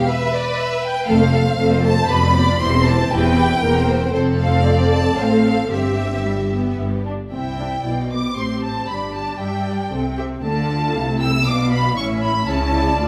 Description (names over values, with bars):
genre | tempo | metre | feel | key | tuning
quick classical-period movement for string orchestra | 117 BPM | 3/4 | rubato | C major | A4 = 441 Hz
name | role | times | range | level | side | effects
warm symphonic violin section | melody | 0.0-13.1 s | G4 to E6 | -27 LUFS | equal | none
warm symphonic violin section | second line | 0.0-13.1 s | C5 to C6 | -26 LUFS | equal | none
warm symphonic viola section | accompaniment | 1.1-13.1 s | G3 to C5 | -25 LUFS | equal | none
rich chamber double bass section | bass | 1.1-13.1 s | E1 to G2 | -25 LUFS | equal | none
rich studio cello section | bass | 1.1-13.1 s | D2 to G3 | -24 LUFS | equal | none
room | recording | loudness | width
wet stone room reverb, RT60 1.2 s | none | -19 LUFS | mono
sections
0.0-7.3 A section; 7.3-13.1 B section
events
none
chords
0.0 C (rootless); 1.1 F; 2.1 G7/F; 2.6 C/E; 3.6 C7/E; 4.1 F; 5.7 C/G; 6.8 G; 7.3 C; 8.9 G5; 9.9 C5; 10.4 Dm; 12.0 A